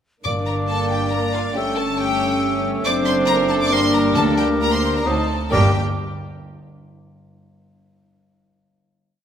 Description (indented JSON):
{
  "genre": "quick classical-period movement for symphony orchestra",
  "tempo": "137 BPM",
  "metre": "3/4",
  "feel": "uneven beats",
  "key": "G minor",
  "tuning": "A4 = 441 Hz",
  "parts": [
    { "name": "clear studio violin section", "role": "melody", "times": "0.2-5.8 s", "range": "F5 to D6", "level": "-25 LUFS", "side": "left 2 dB", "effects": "none" },
    { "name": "rich studio violin section", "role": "second line", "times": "0.2-5.8 s", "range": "F4 to D5", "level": "-28 LUFS", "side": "left 2 dB", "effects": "none" },
    { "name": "dark studio viola section", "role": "accompaniment", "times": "0.2-5.8 s", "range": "A3 to Eb4", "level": "-25 LUFS", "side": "right 2 dB", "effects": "none" },
    { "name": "dark studio double bass section", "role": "bass", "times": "0.2-5.8 s", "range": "F#1 to D2", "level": "-27 LUFS", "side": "right 2 dB", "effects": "none" },
    { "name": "warm studio cello section", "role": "bass", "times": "0.2-5.8 s", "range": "D2 to G2", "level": "-28 LUFS", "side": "right 2 dB", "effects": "none" },
    { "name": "mellow hollow concert flute", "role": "second line", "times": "0.3-5.8 s", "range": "D6 to E6", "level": "-28 LUFS", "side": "left 1 dB", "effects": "none" },
    { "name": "warm clarinet", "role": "second line", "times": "0.3-5.7 s", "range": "Bb4 to D5", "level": "-26 LUFS", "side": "equal", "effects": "none" },
    { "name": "warm bassoon", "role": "accompaniment", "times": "0.3-5.7 s", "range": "F#3 to Bb3", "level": "-29 LUFS", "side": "right 2 dB", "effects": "none" },
    { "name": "mellow French horn section", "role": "sustained chords", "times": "0.3-5.7 s", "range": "A3 to Eb4", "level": "-25 LUFS", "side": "left 3 dB", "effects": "none" },
    { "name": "timpani", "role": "percussion", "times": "0.3-0.9, 4.2-5.7 s", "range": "G2 to D3", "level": "-28 LUFS", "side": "left 1 dB", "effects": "none" }
  ],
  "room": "wet scoring stage reverb, RT60 1.7 s",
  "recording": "none",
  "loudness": "-17 LUFS",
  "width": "side -8 dB against mid",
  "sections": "0.3-5.5 A section; 5.5-6.9 final chord",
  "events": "none",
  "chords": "0.3 Gm; 1.6 A7/G; 2.9 D7/F#; 3.7 Gm; 4.2 Gm/D; 5.1 D7b9; 5.5 Gm",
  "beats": "| 0.25 0.69 1.12 | 1.56 2.00 2.43 | 2.86 3.30 3.73 | 4.17 4.61 5.06 | 5.52"
}